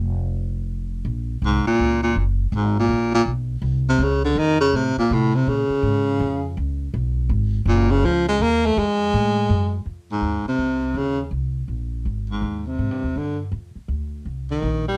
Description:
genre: jazz, small-group swing and bop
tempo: 164 BPM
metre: 3/4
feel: swing 64% on 8ths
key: Bb minor, F minor from 9.9 s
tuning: A4 = 440 Hz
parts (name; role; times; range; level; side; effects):
- upright bass; bass; 0.0-15.0 s; F1 to C3; -26 LUFS; equal; none
- warm baritone saxophone; melody; 1.5-15.0 s; Ab2 to Bb3; -22 LUFS; equal; slapback echo
room: little or no reverb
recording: dry, close 1970s-style studio recording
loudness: -22 LUFS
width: mono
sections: 0.0-1.1 A section; 1.1-9.9 B section; 9.9-15.0 A section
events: none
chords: 0.0 F5; 1.1 Bbmadd9; 2.2 Gb; 3.3 Bsus2; 4.4 F; 5.5 Bbm7; 6.6 Db5; 7.7 Gb5; 8.8 Fm; 9.9 Fm7; 11.0 Eb5; 12.1 Ab; 13.2 G5; 14.3 Cm7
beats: 0.33 0.70 | 1.06 1.43 1.80 | 2.17 2.54 2.90 | 3.27 3.64 4.00 | 4.37 4.74 5.10 | 5.47 5.84 6.20 | 6.57 6.93 7.30 | 7.67 8.03 8.40 | 8.76 9.13 9.49 | 9.86 10.23 10.59 | 10.96 11.33 11.69 | 12.06 12.43 12.79 | 13.16 13.53 13.90 | 14.27 14.63

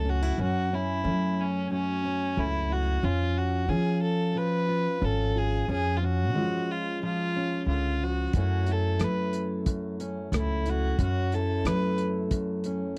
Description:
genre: acoustic folk-pop ballad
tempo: 90 BPM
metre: 4/4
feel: straight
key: F# minor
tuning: A4 = 440 Hz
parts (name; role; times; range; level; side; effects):
- rich violin; melody; 0.0-12.0 s; C#4 to B4; -33 LUFS; equal; none
- fingerpicked steel-string acoustic guitar; accompaniment; 0.0-13.0 s; F#2 to A4; -34 LUFS; equal; none
- upright bass; bass; 0.0-12.8 s; G#1 to F#3; -31 LUFS; equal; none
- cloth-damped thuddy drum kit; drums; 8.3-12.8 s; hi-hat, kick drum, rim click; -32 LUFS; equal; none
room: little or no reverb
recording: dry, close 1970s-style studio recording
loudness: -28 LUFS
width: mono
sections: 0.0-13.0 A section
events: none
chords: 0.0 F#m7; 3.0 C#; 8.3 F#m7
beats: | 0.38 1.04 1.70 2.37 | 3.03 3.69 4.36 5.02 | 5.68 6.34 7.01 7.67 | 8.34 9.00 9.66 10.32 | 10.99 11.65 12.31 12.98

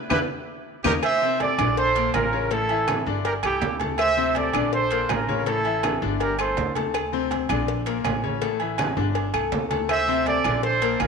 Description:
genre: latin, salsa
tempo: 162 BPM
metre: 4/4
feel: straight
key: unclear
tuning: A4 = 440 Hz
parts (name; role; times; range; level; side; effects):
- mellow trumpet section; melody; 0.1-6.7, 9.9-11.1 s; Eb4 to E5; -23 LUFS; right 3 dB; none
- bright baby grand piano; accompaniment; 0.1-11.1 s; A2 to A5; -27 LUFS; left 12 dB; none
- upright bass; bass; 0.1-11.1 s; G1 to E2; -30 LUFS; right 1 dB; none
- bongos and cowbell; percussion; 0.1-11.1 s; none; -35 LUFS; left 11 dB; none
- claves; percussion; 0.1-11.1 s; none; -35 LUFS; left 10 dB; none
- congas; percussion; 0.1-11.1 s; none; -33 LUFS; right 1 dB; none
- timbales and agogo bells; percussion; 0.1-11.1 s; none; -29 LUFS; right 12 dB; none
room: moderate echo chamber reverb, RT60 2.1 s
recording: 1960s-style stereo with parts hard left and right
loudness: -21 LUFS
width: side -5 dB against mid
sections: 0.0-1.0 A section; 1.0-11.1 B section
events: drum fill 0.0-1.0; band accent 0.0-1.0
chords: 0.3 Eb7(no3); 1.0 D5; 1.8 Bbmaj7; 2.5 A5; 3.2 Gsus2; 4.0 D5; 4.7 Bbmaj7; 5.5 A5; 6.2 Gsus2; 6.9 D5; 7.7 Bbmaj7; 8.4 A5; 9.2 Gsus2; 9.9 D5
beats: 0.29 0.66 | 1.03 1.40 1.77 2.14 | 2.51 2.88 3.25 3.62 | 3.99 4.36 4.72 5.09 | 5.46 5.83 6.20 6.57 | 6.94 7.31 7.68 8.05 | 8.42 8.79 9.15 9.52 | 9.89 10.26 10.63 11.00

